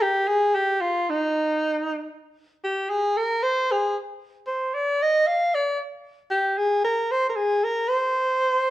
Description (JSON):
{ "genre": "turkish", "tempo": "free time", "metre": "none", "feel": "none", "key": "C makam ussak", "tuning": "A4 = 438 Hz", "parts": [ { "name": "breathy soprano saxophone", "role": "solo", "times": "0.0-8.7 s", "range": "Eb4 to F5", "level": "-21 LUFS", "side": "equal", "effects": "none" } ], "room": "wet stone room reverb, RT60 1.2 s", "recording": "band playing live in one room", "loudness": "-21 LUFS", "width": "side -14 dB against mid", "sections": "0.0-8.7 A section", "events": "none", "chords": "none", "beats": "free time" }